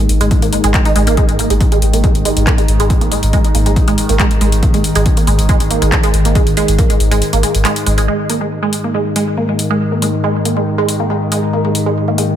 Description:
driving peak-time techno; 139 BPM; 4/4; straight; A4 = 440 Hz
resonant blip pluck; riff; 0.0-12.2 s; G#3 to D#4; -17 LUFS; right 2 dB; phaser, sidechain pumping, ping-pong delay
analog drone; drone; 0.0-12.4 s; G#2 to D#3; -19 LUFS; left 1 dB; chorus, sidechain pumping
saturated sub bass; bass; 0.1-8.1 s; G#1; -16 LUFS; equal; tube saturation, sidechain pumping, low-pass filter
techno drum kit; drums; 0.1-12.3 s; handclaps, hi-hat; -20 LUFS; left 1 dB
electronic kick drum; drums; 0.3-6.9 s; -14 LUFS; equal
moderate plate reverb, RT60 2.3 s; dreamy mix soaked in reverb; -11 LUFS; side -10 dB against mid
0.0-8.1 A section; 8.1-12.4 B section
filter sweep on synth arpeggio sound 0.0-8.1; kick drops out 7.2-8.1
0.0 G#5

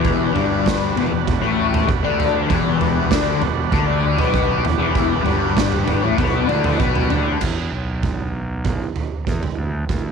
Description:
psychedelic rock; 98 BPM; 4/4; straight; E minor; A4 = 441 Hz
combo organ; sustained chords; 0.0-7.4 s; G3 to B4; -24 LUFS; right 11 dB
fuzz guitar; riff; 0.0-7.4 s; E2 to D4; -20 LUFS; left 13 dB; distortion, phaser
fuzz fingered electric bass; bass; 0.0-10.1 s; E1 to E2; -24 LUFS; right 1 dB; overdrive
raw garage drum kit; drums; 0.0-10.0 s; crash cymbal, kick drum, snare drum, toms; -22 LUFS; right 4 dB
light reverb, studio ambience; 1960s-style stereo with parts hard left and right; -17 LUFS; side -6 dB against mid
0.0-7.4 A section; 7.4-10.1 B section
0.0 Em7; 7.4 E5; 9.6 D5

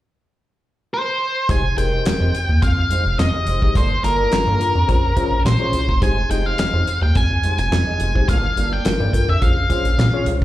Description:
early-eighties boogie funk; 106 BPM; 4/4; straight; F minor; A4 = 442 Hz
octave-fuzz lead guitar; melody; 0.9-10.3 s; Bb4 to Ab5; -22 LUFS; equal; distortion, slapback echo, analog delay
mellow tine electric piano; accompaniment; 1.5-10.3 s; Db4 to Eb5; -26 LUFS; left 3 dB; medium stereo tremolo, slapback echo
electric guitar at the edge of break-up; riff; 1.5-10.4 s; Ab3 to Eb5; -30 LUFS; right 3 dB; lush chorus, slapback echo
rubbery square bass; bass; 1.5-10.4 s; F1 to Bb2; -19 LUFS; equal
damped 70s drum kit; drums; 1.5-10.4 s; handclaps, hi-hat, kick drum, snare drum; -21 LUFS; equal; slapback echo
studio ambience; live gig heard through the venue's PA, club reverb; -16 LUFS; side -14 dB against mid
0.0-1.5 A section; 1.5-10.4 B section
0.0 N.C.; 1.5 Fm9; 3.8 Gm9; 4.9 Bbm9; 6.0 Fm9; 8.3 Gm9; 9.4 Bbm9

